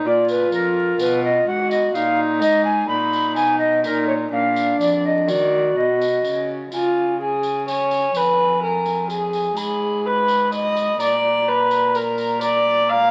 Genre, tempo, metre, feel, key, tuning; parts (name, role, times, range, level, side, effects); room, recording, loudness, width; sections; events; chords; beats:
classical, renaissance-style consort dance; 126 BPM; 3/4; straight; A4 = 440 Hz
warm viola; second line; 0.0-13.1 s; D4 to F5; -22 LUFS; equal
rich cello; bass; 0.0-13.1 s; F2 to Eb3; -30 LUFS; equal
mellow hollow alto recorder; melody; 0.1-13.1 s; Bb4 to Cb6; -24 LUFS; equal
tambourine; percussion; 0.3-12.6 s; -39 LUFS; equal
wet stone room reverb, RT60 1.1 s; very old 78 rpm record, vinyl crackle; -19 LUFS; mono
0.0-6.7 A section; 6.7-13.1 B section
0.0 Bb5; 1.0 B; 3.8 Bbsus4; 4.3 Bb; 5.3 Ebm; 6.7 Db; 8.1 Fdim; 9.6 Abm; 11.0 Bb
0.05 0.52 | 0.99 1.47 1.94 | 2.41 2.89 3.36 | 3.84 4.32 4.79 | 5.28 5.76 6.24 | 6.72 7.20 7.67 | 8.15 8.62 9.10 | 9.57 10.04 10.52 | 10.99 11.46 11.94 | 12.41 12.88